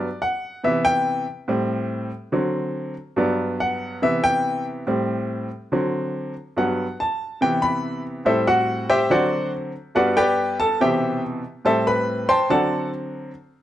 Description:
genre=jazz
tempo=142 BPM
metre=4/4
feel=straight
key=G major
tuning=A4 = 440 Hz
part: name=bright upright piano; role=solo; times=0.0-13.3 s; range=G2 to C6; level=-20 LUFS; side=equal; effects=none
room=moderate large studio reverb, RT60 1.0 s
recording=dark, warm production, nothing above 10.9 kHz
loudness=-20 LUFS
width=side -12 dB against mid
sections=0.0-13.3 A section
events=upright piano solo 0.0-13.3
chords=0.0 Gmaj7(no3) (rootless); 0.6 Cmaj7; 1.5 Am7; 2.3 D7; 3.2 Gmaj7; 4.0 Cmaj7; 4.9 Am7; 5.7 D7; 6.6 Gmaj7; 7.4 Cmaj7; 8.3 Am7; 9.1 D7; 10.0 Gmaj7; 10.8 Cmaj7; 11.7 Am7; 12.5 D7

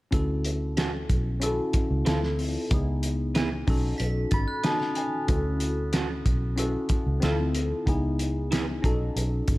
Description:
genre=lush 1970s-style soul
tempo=93 BPM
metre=4/4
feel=straight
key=unclear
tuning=A4 = 435 Hz
part: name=tine electric piano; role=accompaniment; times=0.1-9.6 s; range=B3 to B5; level=-29 LUFS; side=left 1 dB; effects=phaser
part: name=vintage muted fingered electric bass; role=bass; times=0.1-9.6 s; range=G#1 to D2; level=-28 LUFS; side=equal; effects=none
part: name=cloth-damped thuddy drum kit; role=drums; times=0.1-9.6 s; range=hi-hat, kick drum, snare drum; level=-27 LUFS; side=equal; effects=none
part: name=electric guitar through a small old amp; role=riff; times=0.8-8.6 s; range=B3 to B4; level=-34 LUFS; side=right 5 dB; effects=none
part: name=glockenspiel with brass mallets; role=texture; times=4.0-5.3 s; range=B5 to B6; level=-41 LUFS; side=right 1 dB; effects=none
room=little or no reverb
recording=none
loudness=-24 LUFS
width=side -19 dB against mid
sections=0.1-9.6 A section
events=tine electric piano fill 4.0-5.3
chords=0.1 Dmaj7; 2.1 Dm7; 2.7 C#m7; 3.7 B7; 5.3 Dmaj7; 7.2 Dm7; 7.9 C#m7; 8.8 B7

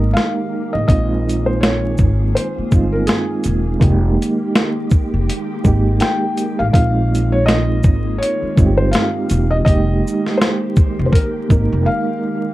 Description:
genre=lo-fi hip hop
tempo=82 BPM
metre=4/4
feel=swing 59% on 16ths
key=F minor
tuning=A4 = 439 Hz
part: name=felt-muted upright piano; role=melody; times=0.0-12.5 s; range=Ab4 to G5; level=-22 LUFS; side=left 1 dB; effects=low-pass filter
part: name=reed electric piano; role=accompaniment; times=0.0-12.5 s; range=Ab3 to Bb4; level=-21 LUFS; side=right 3 dB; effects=fast tremolo, cassette tape, low-pass filter
part: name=soft string machine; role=sustained chords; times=0.0-12.5 s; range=Eb3 to Ab4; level=-27 LUFS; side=left 1 dB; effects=ensemble chorus, low-pass filter
part: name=upright bass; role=bass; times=0.0-11.9 s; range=E1 to Bb1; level=-18 LUFS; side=equal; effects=none
part: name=dusty soul sampler-style drum kit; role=drums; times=0.2-11.7 s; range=hi-hat, kick drum, shaker, snare drum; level=-15 LUFS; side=equal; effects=none
room=moderate small room reverb, RT60 0.5 s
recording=dark, warm production, vinyl crackle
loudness=-14 LUFS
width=side -16 dB against mid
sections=0.0-12.5 A section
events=break 0.0-0.9, 11.9-12.5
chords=0.0 Fm11; 0.9 Bb7sus4; 3.8 Fm11; 6.7 Bb7sus4; 9.7 Fm11

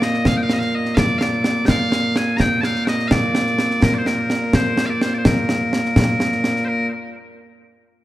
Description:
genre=scottish traditional, Scottish pipe music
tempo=84 BPM (dotted quarters)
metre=6/8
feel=straight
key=Bb major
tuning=A4 = 440 Hz
part: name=loud bright bagpipes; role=melody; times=0.0-6.9 s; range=Bb2 to Bb5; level=-19 LUFS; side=equal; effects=tape echo
part: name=concert snare drum and concert bass drum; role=drums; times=0.0-6.6 s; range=none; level=-19 LUFS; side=equal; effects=none
room=light reverb, studio ambience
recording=rough home demo mix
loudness=-16 LUFS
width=side -15 dB against mid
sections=0.0-6.7 A section; 6.7-8.0 B section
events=none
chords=none

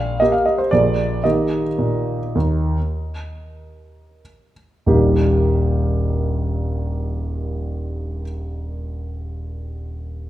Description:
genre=classical, piano waltz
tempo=83-125 BPM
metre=3/4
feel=rubato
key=Eb major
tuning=A4 = 443 Hz
part: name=warm concert grand piano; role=solo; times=0.0-10.3 s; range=Eb1 to F5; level=-18 LUFS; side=equal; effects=none
room=wet recital hall reverb, RT60 1.8 s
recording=recorded in a church or concert hall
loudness=-18 LUFS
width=side -14 dB against mid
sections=0.0-4.9 A section; 4.9-9.0 B section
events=slowing down 0.5-4.9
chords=0.0 Eb69/Bb; 0.7 Bb7; 1.2 Eb

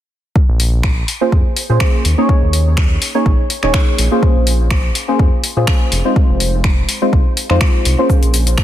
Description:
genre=deep house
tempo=124 BPM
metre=4/4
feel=swing 54% on 16ths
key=Bb minor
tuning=A4 = 439 Hz
part: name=electronic kick drum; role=drums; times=0.4-8.6 s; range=none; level=-13 LUFS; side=equal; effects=overdrive
part: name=round analog bass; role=bass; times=0.5-8.6 s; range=Eb1 to Bb2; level=-15 LUFS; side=equal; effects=sidechain pumping
part: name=deep house drum kit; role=drums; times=0.6-8.6 s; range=cabasa, finger snaps, hi-hat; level=-21 LUFS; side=left 1 dB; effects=overdrive, soft clipping on snare
part: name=deep mellow chord stab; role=stabs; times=1.2-8.6 s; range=Ab3 to Db5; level=-17 LUFS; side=equal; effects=chorus, vintage 12-bit sampler grit, dub echo
room=little or no reverb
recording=dense, heavily limited modern master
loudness=-12 LUFS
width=side -12 dB against mid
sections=0.4-8.6 A section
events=none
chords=0.4 Bbm9; 2.0 Eb7sus4; 4.2 Fm7; 8.1 Bbm9

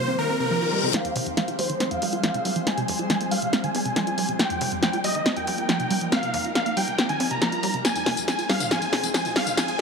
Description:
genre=uplifting trance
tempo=139 BPM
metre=4/4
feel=straight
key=F minor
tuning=A4 = 440 Hz
part: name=supersaw chords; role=melody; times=0.0-9.8 s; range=Bb4 to Bb5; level=-27 LUFS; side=equal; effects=low-pass filter, tape echo
part: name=shimmering ambient pad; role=sustained chords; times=0.0-9.8 s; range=Eb3 to C5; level=-30 LUFS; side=left 1 dB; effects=chorus, built-in reverb
part: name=wide unison pluck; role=arpeggios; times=0.1-9.8 s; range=F2 to F4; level=-30 LUFS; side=right 3 dB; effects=cassette tape, tape echo
part: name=punchy analog drum machine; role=drums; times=0.1-9.8 s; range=hi-hat, snare drum, tambourine, toms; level=-25 LUFS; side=left 1 dB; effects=low-pass filter on perc, low-pass filter on snare, low-pass filter on hats, low-pass filter on toms
part: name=reverse cymbal and riser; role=sound effects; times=0.3-0.9, 9.1-9.8 s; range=none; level=-31 LUFS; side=left 8 dB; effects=none
part: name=tight sequencer bass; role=bass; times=1.2-9.5 s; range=F1 to Eb2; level=-40 LUFS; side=left 1 dB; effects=none
room=light reverb, digital ambience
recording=high-pass filter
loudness=-22 LUFS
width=side -5 dB against mid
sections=0.9-9.8 A section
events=reverse cymbal 0.3-0.9; build-up 0.9-9.8; drum fill 0.9-9.8; filter sweep on supersaw synth 0.9-9.8; filter sweep on synth pluck 0.9-9.8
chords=0.0 Cm7; 0.9 Fmadd9; 4.4 Ebadd9; 7.8 Ab

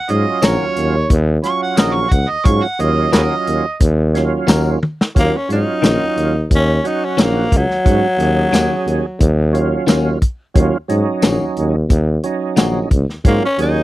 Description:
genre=straight-eighth soul blues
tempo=89 BPM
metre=4/4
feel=straight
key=Eb minor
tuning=A4 = 440 Hz
part: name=overdriven harmonica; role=second line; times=0.0-3.8 s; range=Ab4 to Db6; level=-19 LUFS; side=right 3 dB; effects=none
part: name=percussive tonewheel organ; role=accompaniment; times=0.1-13.8 s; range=Gb3 to Ab4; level=-20 LUFS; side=right 6 dB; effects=overdrive, chorus vibrato, slow rotary speaker
part: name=warm tuba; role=bass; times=0.1-13.8 s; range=Bb1 to Ab2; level=-17 LUFS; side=equal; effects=none
part: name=warm soul drum kit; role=drums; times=0.1-13.8 s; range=hi-hat, kick drum, snare drum, tambourine, toms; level=-14 LUFS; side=equal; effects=none
part: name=direct-recorded clean electric guitar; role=stabs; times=0.4-12.8 s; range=Eb3 to Bb4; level=-19 LUFS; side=left 5 dB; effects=phaser
part: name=growling tenor saxophone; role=melody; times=5.2-13.8 s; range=Gb3 to Eb4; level=-18 LUFS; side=left 1 dB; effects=slapback echo
room=little or no reverb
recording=dry, close 1970s-style studio recording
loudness=-13 LUFS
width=side -16 dB against mid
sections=0.0-5.2 A section; 5.2-13.8 A section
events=harmonica solo 0.0-5.2; drum fill 4.8-5.2; tenor saxophone solo 5.2-13.8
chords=0.0 Ebm7

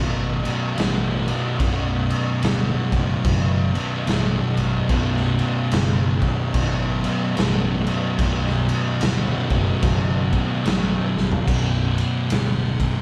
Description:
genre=stoner and doom metal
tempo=73 BPM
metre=4/4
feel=swing 61% on 8ths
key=unclear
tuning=A4 = 440 Hz
part: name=thick fuzz guitar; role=riff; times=0.0-13.0 s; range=B1 to B2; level=-28 LUFS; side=equal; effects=distortion
part: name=thick fuzz guitar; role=riff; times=0.0-13.0 s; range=B1 to B2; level=-26 LUFS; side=equal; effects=distortion
part: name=fingered electric bass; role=bass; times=0.0-12.8 s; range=B0 to A1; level=-28 LUFS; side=equal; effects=overdrive
part: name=raw garage drum kit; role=drums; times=0.5-13.0 s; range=crash cymbal, kick drum, ride cymbal, snare drum, toms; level=-27 LUFS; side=equal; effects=none
room=light reverb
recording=band playing live in one room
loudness=-21 LUFS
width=mono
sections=0.0-11.5 A section; 11.5-13.0 B section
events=drum fill 11.1-11.5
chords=0.0 B5; 11.5 Bm

